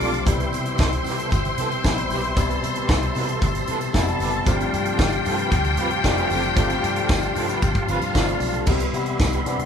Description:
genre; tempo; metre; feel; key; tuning
disco; 114 BPM; 4/4; straight; C major; A4 = 440 Hz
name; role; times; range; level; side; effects
rich studio string section; second line; 0.0-8.7 s; F4 to D6; -27 LUFS; left 2 dB; none
barky tine electric piano; accompaniment; 0.0-9.7 s; B2 to E4; -27 LUFS; left 4 dB; overdrive
electric guitar through a small old amp; accompaniment; 0.0-9.6 s; B3 to B4; -31 LUFS; right 4 dB; tremolo
mellow tonewheel organ; sustained chords; 0.0-9.7 s; G4 to C6; -28 LUFS; equal; chorus vibrato, fast rotary speaker
vintage muted fingered electric bass; bass; 0.0-9.7 s; F1 to C3; -28 LUFS; equal; none
tight funk drum kit; drums; 0.0-9.7 s; crash cymbal, hi-hat, kick drum, snare drum; -24 LUFS; equal; none
tambourine; percussion; 0.0-9.6 s; none; -40 LUFS; right 3 dB; none
room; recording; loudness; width
moderate large studio reverb, RT60 1.2 s; band playing live in one room, lossy compression artefacts; -19 LUFS; side -7 dB against mid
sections
0.0-8.7 A section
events
none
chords
0.3 Cmaj7; 4.5 G9sus4; 8.7 Cmaj7

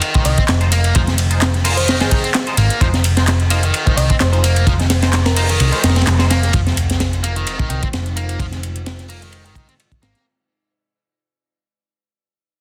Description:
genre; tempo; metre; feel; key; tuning
breakbeat, breaks; 129 BPM; 4/4; swing 54% on 16ths; F minor; A4 = 440 Hz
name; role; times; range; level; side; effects
distorted electric guitar; riff; 0.0-10.2 s; Eb3 to C4; -26 LUFS; equal; overdrive, digital delay
crunchy breakbeat drum kit; drums; 0.0-10.3 s; hi-hat, kick drum, ride cymbal, snare drum; -21 LUFS; equal; none
garage drum kit; drums; 0.0-10.2 s; handclaps, hi-hat, ride cymbal; -26 LUFS; equal; none
band-passed chord stab; stabs; 0.1-6.3 s; Ab3 to C5; -29 LUFS; equal; phaser, digital delay
thumb-piano-like synth pluck; melody; 0.3-5.9 s; Ab4 to Eb5; -29 LUFS; equal; chorus, AM radio sound, digital delay
hollow-body short-scale picked electric bass; bass; 0.3-10.1 s; F1 to C2; -19 LUFS; equal; low-pass filter
deep dark ambient pad; sustained chords; 7.2-10.2 s; Ab3 to C5; -40 LUFS; equal; chorus, built-in reverb, vintage 12-bit sampler grit, sidechain pumping
sub drop; sound effects; 6.6-8.4 s; none; -30 LUFS; equal; none
room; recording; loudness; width
small room ambience; dense, heavily limited modern master; -16 LUFS; mono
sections
0.0-6.5 A section; 6.5-10.3 B section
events
drop 0.0-6.5; band accent 6.1; fade-out 6.5-10.3; impact 6.5-8.4; filter sweep on picked electric bass 6.5-10.3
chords
0.0 Fm7

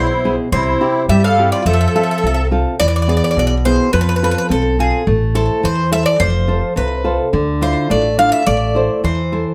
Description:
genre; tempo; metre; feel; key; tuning
greek folk, Greek bouzouki band; 106 BPM; 2/4; straight; unclear; A4 = 440 Hz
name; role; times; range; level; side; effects
Greek bouzouki; melody; 0.0-9.4 s; G#4 to F5; -20 LUFS; equal; slapback echo
musette accordion; second line; 0.0-2.5 s; E4 to A4; -22 LUFS; equal; none
nylon-string guitar; accompaniment; 0.0-9.5 s; B2 to C5; -20 LUFS; equal; none
upright bass; bass; 0.0-9.4 s; F1 to G2; -21 LUFS; equal; none
room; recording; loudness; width
moderate studio reverb, RT60 0.6 s; none; -15 LUFS; mono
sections
0.0-2.8 A section; 2.8-9.5 B section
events
none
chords
0.0 E; 0.5 C; 1.7 F; 2.8 E; 3.9 F; 5.1 Am; 6.2 F; 7.3 Dmadd9; 8.5 Am

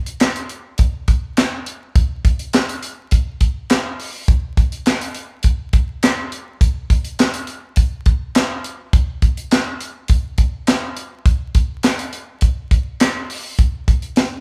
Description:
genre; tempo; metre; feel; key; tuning
funk; 103 BPM; 4/4; straight; none; none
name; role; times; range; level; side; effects
tight funk drum kit; drums; 0.1-14.3 s; handclaps, hi-hat, kick drum, snare drum; -18 LUFS; equal; none
room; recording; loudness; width
light reverb; band playing live in one room, vinyl crackle; -19 LUFS; mono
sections
0.0-13.6 A section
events
none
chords
none

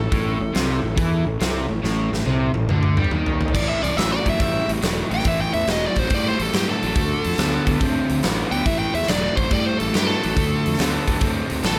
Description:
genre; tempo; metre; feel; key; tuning
blues rock power trio and southern rock; 140 BPM; 4/4; swing 67% on 8ths; A minor; A4 = 441 Hz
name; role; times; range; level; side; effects
biting lead guitar; melody; 0.0-11.8 s; G4 to G5; -28 LUFS; equal; overdrive
overdriven semi-hollow guitar; riff; 0.0-11.8 s; A2 to C4; -26 LUFS; equal; none
fuzz fingered electric bass; bass; 0.0-11.8 s; E1 to A2; -28 LUFS; equal; overdrive
huge arena drum kit; drums; 0.1-11.8 s; crash cymbal, hi-hat, kick drum, snare drum, toms; -26 LUFS; equal; none
room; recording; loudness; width
light reverb; none; -21 LUFS; mono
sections
0.0-3.5 A section; 3.5-11.8 B section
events
drum fill 1.8-3.5; lead electric guitar solo 3.5-11.8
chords
0.0 Am; 3.5 A5; 7.0 D5; 8.7 A5; 10.4 D5

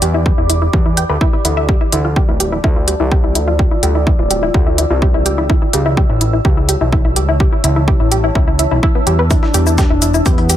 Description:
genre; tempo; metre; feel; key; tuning
melodic techno; 126 BPM; 4/4; straight; unclear; A4 = 440 Hz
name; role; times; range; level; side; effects
deep dark ambient pad; sustained chords; 0.0-10.6 s; E4 to E6; -22 LUFS; equal; chorus, built-in reverb, sidechain pumping
analog pluck; arpeggios; 0.0-10.6 s; B3 to G5; -19 LUFS; equal; chorus, sidechain pumping, digital delay
fat analog bass; bass; 0.0-10.6 s; D1 to E2; -16 LUFS; equal; sidechain pumping
electronic hi-hat and shaker; drums; 0.0-10.6 s; none; -17 LUFS; left 1 dB; overdrive, sidechain pumping on hats, sidechain pumping on perc
electronic kick drum; drums; 0.3-10.4 s; none; -14 LUFS; equal; overdrive
wide unison lead; melody; 9.3-10.6 s; B3 to D4; -19 LUFS; left 2 dB; sidechain pumping
dusty soul sampler-style drum kit; drums; 9.3-10.6 s; hi-hat, snare drum; -28 LUFS; left 1 dB; high-pass filter on hats, high-pass filter on snare
room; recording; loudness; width
digital ambience; none; -11 LUFS; side -11 dB against mid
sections
0.0-10.6 A section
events
none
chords
0.0 Em7; 1.7 Dmadd9; 5.5 A; 9.3 Em7

